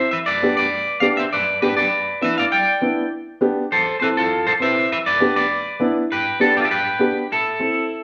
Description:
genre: latin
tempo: 200 BPM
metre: 4/4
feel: straight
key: unclear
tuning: A4 = 441 Hz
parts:
  - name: electric guitar at the edge of break-up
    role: melody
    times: 0.0-8.0 s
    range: D4 to G5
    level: -20 LUFS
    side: equal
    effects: spring reverb
  - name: dark upright piano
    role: accompaniment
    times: 0.0-7.8 s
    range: B3 to B4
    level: -23 LUFS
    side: equal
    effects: none
room: wet studio reverb, RT60 0.9 s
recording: band playing live in one room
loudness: -19 LUFS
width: mono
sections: 0.0-8.0 A section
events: none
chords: 0.1 G; 3.7 Am; 4.9 G; 7.3 Am

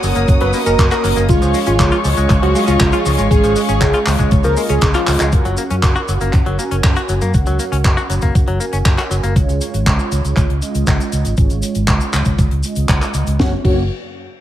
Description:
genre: italo disco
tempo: 119 BPM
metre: 4/4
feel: straight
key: F# major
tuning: A4 = 441 Hz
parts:
  - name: dark chamber string section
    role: sustained chords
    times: 0.0-5.3 s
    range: G#4 to D#6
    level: -23 LUFS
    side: left 2 dB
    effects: vintage 12-bit sampler grit
  - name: direct-recorded clean electric guitar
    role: arpeggios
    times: 0.0-9.3 s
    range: E#3 to F#4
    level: -24 LUFS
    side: left 5 dB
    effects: vintage 12-bit sampler grit, tape echo
  - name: mellow synth brass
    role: stabs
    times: 0.0-13.8 s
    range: G#3 to G#5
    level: -22 LUFS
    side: right 3 dB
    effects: chorus
  - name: fingered electric bass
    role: bass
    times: 0.0-13.9 s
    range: F#1 to F#2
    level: -18 LUFS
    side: equal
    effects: none
  - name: tight funk drum kit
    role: drums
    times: 0.0-13.7 s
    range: cabasa, crash cymbal, handclaps, hi-hat, snare drum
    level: -22 LUFS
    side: equal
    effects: gated reverb
  - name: electronic kick drum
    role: drums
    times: 0.3-13.7 s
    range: none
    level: -15 LUFS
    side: equal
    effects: none
  - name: wide unison lead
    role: melody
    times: 0.4-5.2, 13.4-13.8 s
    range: E#4 to B4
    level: -19 LUFS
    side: equal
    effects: tape echo
room: light reverb, small room reverb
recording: none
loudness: -13 LUFS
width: side -12 dB against mid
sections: 0.0-5.3 A section; 5.3-13.4 B section; 13.4-14.4 C section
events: drum fill 5.1; filter sweep on analog polysynth 5.3-13.4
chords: 0.0 F#; 1.3 C#; 5.3 F#; 9.4 C#; 13.4 F#

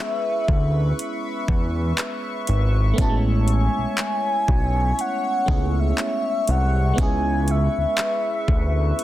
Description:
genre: contemporary R&B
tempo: 60 BPM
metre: 4/4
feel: swing 58% on 16ths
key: unclear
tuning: A4 = 440 Hz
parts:
  - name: mellow horn-like synth lead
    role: melody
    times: 0.0-9.0 s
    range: E5 to A5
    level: -25 LUFS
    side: left 1 dB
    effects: chorus, tape echo
  - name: FM electric piano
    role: accompaniment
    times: 0.0-9.0 s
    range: G#3 to G#4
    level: -28 LUFS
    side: right 2 dB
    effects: chorus
  - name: chorused pulse-width pad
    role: sustained chords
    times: 0.0-9.0 s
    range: B4 to C#6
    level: -31 LUFS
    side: left 3 dB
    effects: none
  - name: fat analog bass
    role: bass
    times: 0.5-8.9 s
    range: G#1 to E2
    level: -20 LUFS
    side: equal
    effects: none
  - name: smooth R&B drum kit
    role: drums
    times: 0.5-9.0 s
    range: handclaps, hi-hat, kick drum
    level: -23 LUFS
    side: equal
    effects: none
room: little or no reverb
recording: dense, heavily limited modern master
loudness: -19 LUFS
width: side -14 dB against mid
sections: 0.0-9.0 A section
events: none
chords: 0.0 C#m7; 3.0 Amaj7; 7.0 C#m7

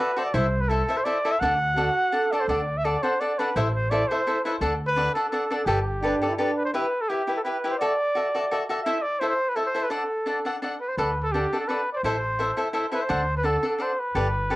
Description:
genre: mexican folk, mariachi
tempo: 170 BPM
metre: 3/4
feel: swing 53% on 8ths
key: unclear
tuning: A4 = 440 Hz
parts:
  - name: warm trumpet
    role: melody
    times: 0.0-14.6 s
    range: G4 to F#5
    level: -25 LUFS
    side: equal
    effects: cassette tape, plate reverb
  - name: cavaquinho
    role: accompaniment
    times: 0.0-14.6 s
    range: D4 to F#5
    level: -26 LUFS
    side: left 1 dB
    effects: plate reverb
  - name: upright bass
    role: bass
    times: 0.3-6.1, 11.0-14.6 s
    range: G1 to D2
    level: -28 LUFS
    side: equal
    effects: none
  - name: mellow trumpet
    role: second line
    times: 1.8-2.6, 6.0-6.7 s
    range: D4 to A4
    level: -27 LUFS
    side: right 3 dB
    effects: plate reverb
room: wet booth ambience, RT60 0.2 s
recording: home recording on cassette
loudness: -22 LUFS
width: side -18 dB against mid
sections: 0.0-6.7 A section; 6.7-14.6 A section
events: none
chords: 0.3 Am/C; 1.4 D; 3.6 Am; 4.6 D; 5.7 Gadd9; 6.7 Em; 7.8 Dadd9; 8.9 Am; 9.9 D; 12.0 Am; 13.1 D

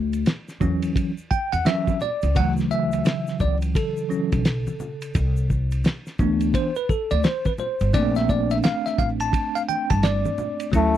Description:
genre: hip hop, jazz-hop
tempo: 86 BPM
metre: 4/4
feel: swing 62% on 16ths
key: D major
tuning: A4 = 440 Hz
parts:
  - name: upright bass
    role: bass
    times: 0.0-11.0 s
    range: G1 to E2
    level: -23 LUFS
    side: left 1 dB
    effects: none
  - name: cloth-damped thuddy drum kit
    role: drums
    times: 0.1-10.9 s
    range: hi-hat, kick drum, ride cymbal, snare drum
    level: -23 LUFS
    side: equal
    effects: none
  - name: tube shaker and congas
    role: percussion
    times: 0.1-11.0 s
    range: none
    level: -36 LUFS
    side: left 4 dB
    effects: none
  - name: bell-like tine electric piano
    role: accompaniment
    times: 0.6-11.0 s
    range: C#3 to A5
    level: -24 LUFS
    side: right 1 dB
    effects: fast stereo tremolo
  - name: trombone with cup mute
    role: melody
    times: 10.8-11.0 s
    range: A3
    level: -20 LUFS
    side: left 4 dB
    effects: none
room: little or no reverb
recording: dry, close 1970s-style studio recording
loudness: -20 LUFS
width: side -11 dB against mid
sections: 0.0-10.7 A section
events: tine electric piano solo 0.0-10.7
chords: 0.0 Dmaj9; 5.2 Cmaj9; 7.9 Bbmaj9

